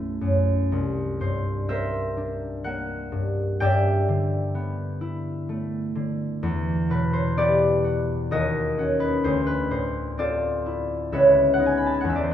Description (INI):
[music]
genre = classical, solo harp piece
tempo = 64 BPM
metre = 3/4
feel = rubato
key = unclear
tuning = A4 = 442 Hz
[part]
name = concert harp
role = solo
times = 0.0-12.3 s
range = B1 to B5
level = -22 LUFS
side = equal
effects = none
[sound]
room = wet recital hall reverb, RT60 1.4 s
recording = none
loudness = -21 LUFS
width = side -10 dB against mid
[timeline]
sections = 0.0-12.3 A section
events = none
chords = 0.0 Bm11; 0.7 C9; 3.6 G69; 6.4 Em9; 8.3 Ebm7; 9.2 Dm9; 11.1 C#m9